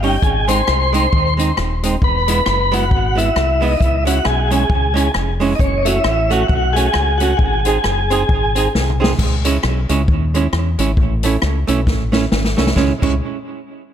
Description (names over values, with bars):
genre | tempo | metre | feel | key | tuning
ska | 134 BPM | 4/4 | swing 58% on 8ths | C# minor | A4 = 440 Hz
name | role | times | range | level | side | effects
tonewheel organ | melody | 0.0-8.7 s | C#4 to B#4 | -18 LUFS | equal | fast rotary speaker, tape echo
archtop guitar, miked and amplified | accompaniment | 0.0-13.1 s | G3 to G#4 | -20 LUFS | right 6 dB | tape echo
deep dub fingered electric bass | bass | 0.0-13.2 s | D#1 to E2 | -18 LUFS | left 1 dB | none
swinging big-band drum kit | drums | 0.0-13.1 s | crash cymbal, hi-hat, kick drum, rim click, snare drum, toms | -20 LUFS | left 1 dB | none
room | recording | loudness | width
light reverb, studio reverb | none | -14 LUFS | side -9 dB against mid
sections
0.0-9.2 A section; 9.2-12.8 B section; 12.8-13.9 C section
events
drum fill 8.7-9.2, 11.9-12.8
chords
0.2 G#; 2.0 E; 3.8 C#m; 5.6 F#m; 7.4 G#; 9.2 C#m; 11.0 A; 12.8 C#m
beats
| 0.22 0.67 1.12 1.57 | 2.01 2.46 2.91 3.36 | 3.81 4.25 4.70 5.15 | 5.60 6.05 6.49 6.94 | 7.39 7.84 8.29 8.73 | 9.18 9.63 10.08 10.52 | 10.97 11.42 11.87 12.31 | 12.76